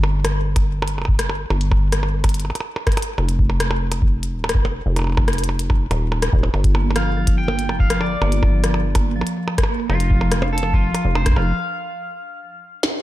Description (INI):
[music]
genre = IDM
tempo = 143 BPM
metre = 4/4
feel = straight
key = G minor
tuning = A4 = 440 Hz
[part]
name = deep acid bass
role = bass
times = 0.0-11.5 s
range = Eb1 to G1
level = -21 LUFS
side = equal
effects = none
[part]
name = glitchy drum kit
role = drums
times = 0.0-12.9 s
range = hi-hat, percussion blips, rim click, snare drum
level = -24 LUFS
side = equal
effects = none
[part]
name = electronic kick drum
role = drums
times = 0.6-11.4 s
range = none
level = -18 LUFS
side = equal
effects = none
[part]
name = vibraphone with medium hard mallets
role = arpeggios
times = 6.7-11.4 s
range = F3 to D4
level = -26 LUFS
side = right 1 dB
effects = tape echo
[part]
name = electric guitar at the edge of break-up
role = melody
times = 7.0-12.8 s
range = F4 to G5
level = -26 LUFS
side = equal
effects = dub echo
[sound]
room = little or no reverb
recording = dark, warm production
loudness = -17 LUFS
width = side -15 dB against mid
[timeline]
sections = 0.0-13.0 A section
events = break 11.6-13.0; drum fill 12.8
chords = 0.0 N.C.; 3.2 Ebsus2; 6.5 G7(no3); 9.9 N.C.